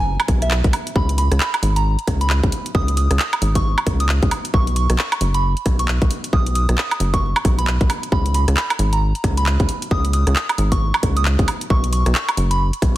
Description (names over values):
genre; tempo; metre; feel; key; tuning
UK garage, two-step garage; 134 BPM; 4/4; swing 60% on 16ths; unclear; A4 = 439 Hz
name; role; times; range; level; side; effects
soft synth bell; melody; 0.0-12.6 s; E5 to D#6; -25 LUFS; right 2 dB; chorus, dub echo
rubbery square bass; bass; 0.0-13.0 s; F#1 to C#2; -18 LUFS; equal; sidechain pumping
garage drum kit; drums; 0.2-12.9 s; handclaps, hi-hat, rim click, woodblock; -22 LUFS; right 1 dB; studio reverb
electronic kick drum; drums; 0.3-12.9 s; none; -21 LUFS; equal; studio reverb
room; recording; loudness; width
little or no reverb; dense, heavily limited modern master, vinyl crackle; -16 LUFS; side -15 dB against mid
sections
0.0-13.0 A section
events
none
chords
0.0 B5; 1.0 C#5; 4.5 B5; 8.1 C#5; 11.7 B5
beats
0.06 0.51 | 0.96 1.40 1.85 2.30 | 2.75 3.19 3.64 4.09 | 4.54 4.99 5.43 5.88 | 6.33 6.78 7.22 7.67 | 8.12 8.57 9.02 9.46 | 9.91 10.36 10.81 11.26 | 11.70 12.15 12.60